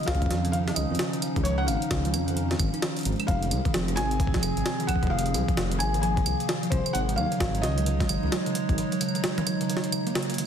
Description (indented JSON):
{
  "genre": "IDM",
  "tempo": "131 BPM",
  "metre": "4/4",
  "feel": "swing 62% on 16ths",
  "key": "unclear",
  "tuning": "A4 = 440 Hz",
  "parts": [
    { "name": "felt-muted upright piano", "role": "melody", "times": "0.0-10.1 s", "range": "C5 to Ab5", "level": "-32 LUFS", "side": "left 1 dB", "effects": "digital delay" },
    { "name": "warbly tape-like pad", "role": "sustained chords", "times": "0.0-10.5 s", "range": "F3 to Db5", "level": "-32 LUFS", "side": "equal", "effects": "chorus, built-in reverb" },
    { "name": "jungle sampler-style drum kit", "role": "drums", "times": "0.0-10.5 s", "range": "claves, hi-hat, snare drum, toms", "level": "-31 LUFS", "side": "equal", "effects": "overdrive" },
    { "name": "dark detuned saw bass", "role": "bass", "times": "0.1-8.8 s", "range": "F1 to F2", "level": "-28 LUFS", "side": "left 1 dB", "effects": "tube saturation" },
    { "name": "electronic kick drum", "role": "drums", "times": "0.1-8.8 s", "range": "none", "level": "-27 LUFS", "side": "left 1 dB", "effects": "overdrive" },
    { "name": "buzzing kalimba", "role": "arpeggios", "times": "0.2-10.4 s", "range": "C3 to Eb4", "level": "-30 LUFS", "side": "right 4 dB", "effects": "tape echo" }
  ],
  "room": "light reverb, digital ambience",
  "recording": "dense, heavily limited modern master",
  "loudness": "-24 LUFS",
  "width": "side -8 dB against mid",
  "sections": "0.0-10.5 A section",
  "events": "none",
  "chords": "0.0 Dbadd9; 3.3 Fm; 6.9 Absus4"
}